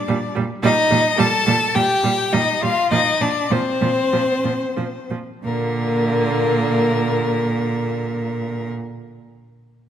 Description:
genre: quick classical-period movement for string quartet.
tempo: 88-110 BPM.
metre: 4/4.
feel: rubato.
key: Bb major.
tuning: A4 = 440 Hz.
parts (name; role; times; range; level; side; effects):
rich violin; melody; 0.0-8.7 s; Bb4 to A5; -22 LUFS; left 6 dB; none.
rich violin; second line; 0.0-8.7 s; Bb3 to A4; -23 LUFS; equal; none.
rich viola; accompaniment; 0.1-8.7 s; D3 to G3; -26 LUFS; right 5 dB; none.
warm cello; bass; 0.1-8.7 s; Bb2; -23 LUFS; right 4 dB; none.
room: moderate concert hall reverb, RT60 2.0 s.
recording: none.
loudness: -17 LUFS.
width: side -9 dB against mid.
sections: 0.0-5.4 A section; 5.4-8.1 B section.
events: slowing down 0.0-5.4.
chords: 0.0 Eb/Bb; 2.9 F5/Bb; 5.4 Bb.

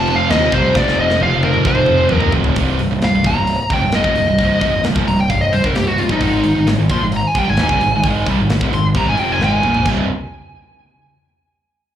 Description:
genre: heavy metal.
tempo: 132 BPM.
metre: 4/4.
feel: straight.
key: C minor.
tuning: A4 = 440 Hz.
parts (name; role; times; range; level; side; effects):
high-gain lead guitar; melody; 0.0-9.9 s; Eb4 to C6; -18 LUFS; left 1 dB; distortion, slapback echo, tape echo.
pipe organ, foundations; sustained chords; 0.0-2.6 s; none; barely audible; none; none.
crunchy overdriven guitar; riff; 0.0-2.6 s; F2 to F3; -22 LUFS; right 2 dB; slapback echo.
heavy high-gain guitar; riff; 0.0-10.1 s; C2 to Bb3; -20 LUFS; right 8 dB; distortion, slapback echo.
sludgy distorted guitar; riff; 0.0-10.1 s; C2 to Bb3; -23 LUFS; left 7 dB; overdrive, slapback echo.
fuzz picked electric bass; bass; 0.0-10.1 s; C1 to Eb2; -20 LUFS; equal; overdrive.
tight metal drum kit; drums; 0.1-10.0 s; crash cymbal, hi-hat, kick drum, snare drum, toms; -21 LUFS; equal; none.
room: studio ambience.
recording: live gig heard through the venue's PA, club reverb.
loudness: -13 LUFS.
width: side -10 dB against mid.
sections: 0.0-2.6 A section; 2.6-9.9 B section; 9.9-11.7 C section.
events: drum fill 0.7-2.6, 9.4-9.9; lead electric guitar solo 2.6-9.9.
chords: 0.0 F; 2.6 Cm; 6.2 Ab5; 9.9 C5.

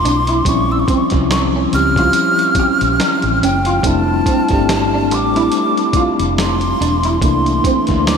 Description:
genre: R&B, neo-soul.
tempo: 71 BPM.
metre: 4/4.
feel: swing 56% on 16ths.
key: F major.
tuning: A4 = 441 Hz.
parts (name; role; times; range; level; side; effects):
breathy hollow jazz flute; melody; 0.0-8.2 s; G5 to F6; -18 LUFS; equal; tape echo.
electric guitar through a small old amp; second line; 0.0-7.8 s; C4 to G4; -22 LUFS; right 3 dB; ensemble chorus.
mellow tine electric piano; accompaniment; 0.0-8.2 s; E3 to G4; -17 LUFS; left 1 dB; medium stereo tremolo.
vintage muted fingered electric bass; bass; 0.0-8.2 s; E1 to D2; -20 LUFS; equal; none.
boom bap sampler-style drum kit; drums; 0.1-8.2 s; hi-hat, kick drum, snare drum; -21 LUFS; equal; none.
room: wet huge ambient reverb, RT60 8.2 s.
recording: dreamy mix soaked in reverb.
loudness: -12 LUFS.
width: side -6 dB against mid.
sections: 0.0-8.2 A section.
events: none.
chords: 0.5 Bbm6; 3.8 Fmaj9; 7.2 C13.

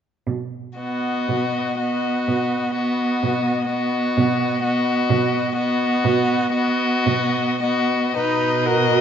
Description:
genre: classical, slow romantic movement for string quartet.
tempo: 51-65 BPM.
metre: 4/4.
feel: rubato.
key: B major.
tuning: A4 = 440 Hz.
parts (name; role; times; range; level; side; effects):
warm cello; bass; 0.3-9.0 s; B2; -24 LUFS; right 6 dB; none.
rich violin; melody; 0.8-9.0 s; D#5; -26 LUFS; left 10 dB; none.
bright violin; second line; 0.8-9.0 s; F#4 to B4; -24 LUFS; left 3 dB; none.
rich viola; accompaniment; 0.8-9.0 s; B3 to F#4; -22 LUFS; right 2 dB; none.
room: moderate scoring stage reverb, RT60 1.6 s.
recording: nothing above 7.6 kHz.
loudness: -18 LUFS.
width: side -8 dB against mid.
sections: 0.3-8.2 A section.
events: none.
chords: 0.3 B.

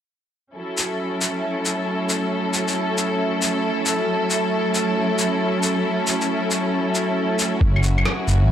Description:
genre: future garage.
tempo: 136 BPM.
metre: 4/4.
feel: swing 66% on 16ths.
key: F# minor.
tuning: A4 = 440 Hz.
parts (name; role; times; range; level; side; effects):
drifting glass-harmonics texture; texture; 1.4-8.5 s; A3 to C#5; -27 LUFS; right 2 dB; chorus, built-in reverb.
rich symphonic string section; sustained chords; 0.6-8.5 s; F#3 to A4; -22 LUFS; equal; sidechain pumping, low-pass filter.
electronic shaker, claves and rim click; drums; 0.8-8.4 s; none; -24 LUFS; left 2 dB; none.
dark detuned saw bass; bass; 7.6-8.5 s; F#1 to A1; -17 LUFS; equal; sidechain pumping.
electronic kick drum; drums; 7.6-7.7 s; none; -18 LUFS; equal; none.
room: moderate lush hall reverb, RT60 1.9 s.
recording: none.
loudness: -19 LUFS.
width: side -10 dB against mid.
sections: 0.6-8.5 A section.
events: none.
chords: 0.6 F#m7.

